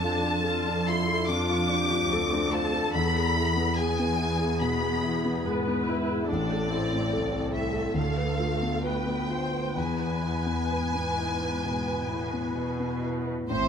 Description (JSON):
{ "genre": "classical, romantic movement for piano and orchestra", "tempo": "63-73 BPM", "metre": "4/4", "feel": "rubato", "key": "unclear", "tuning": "A4 = 441 Hz", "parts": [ { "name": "rich studio violin section", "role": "melody", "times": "0.0-13.7 s", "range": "D5 to D6", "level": "-31 LUFS", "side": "left 2 dB", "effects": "none" }, { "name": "warm concert grand piano", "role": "melody", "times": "0.0-13.7 s", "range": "A1 to B4", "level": "-28 LUFS", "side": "left 2 dB", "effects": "none" }, { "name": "dark studio viola section", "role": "accompaniment", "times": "0.0-13.7 s", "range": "A3 to C5", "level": "-33 LUFS", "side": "right 2 dB", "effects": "none" }, { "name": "warm studio cello section", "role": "bass", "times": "0.0-13.7 s", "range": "C2 to B2", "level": "-33 LUFS", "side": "right 4 dB", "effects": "none" }, { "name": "warm studio violin section", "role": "second line", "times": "13.5-13.7 s", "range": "C5", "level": "-26 LUFS", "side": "right 2 dB", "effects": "none" }, { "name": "mellow French horn section", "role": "sustained chords", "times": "13.5-13.7 s", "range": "C4 to E4", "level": "-31 LUFS", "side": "left 1 dB", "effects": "none" }, { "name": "warm studio double bass section", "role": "bass", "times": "13.5-13.7 s", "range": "A1", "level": "-35 LUFS", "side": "right 4 dB", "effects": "none" } ], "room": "light reverb", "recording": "close, detailed microphones", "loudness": "-25 LUFS", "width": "side -7 dB against mid", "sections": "0.0-13.5 A section", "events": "none", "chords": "0.0 Dm/F; 2.9 E; 6.3 Am; 8.0 Bdim/D; 9.8 E" }